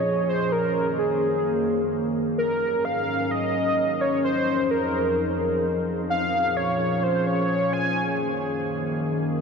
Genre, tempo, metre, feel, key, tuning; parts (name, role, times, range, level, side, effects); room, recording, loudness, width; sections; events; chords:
IDM; free time; Bb minor; A4 = 440 Hz
warm velvety synth lead; melody; 0.0-8.2 s; Ab4 to Ab5; -24 LUFS; equal; chorus, ping-pong delay
warbly tape-like pad; sustained chords; 0.0-9.4 s; F2 to Bb4; -25 LUFS; equal; chorus, built-in reverb
wet huge ambient reverb, RT60 8.2 s; dreamy mix soaked in reverb; -22 LUFS; side -5 dB against mid
0.0-9.4 A section
0.0 Bbm7; 0.5 Gb69; 2.4 Ab9sus4; 4.2 Fm7; 6.1 Bbm7; 8.0 Gb69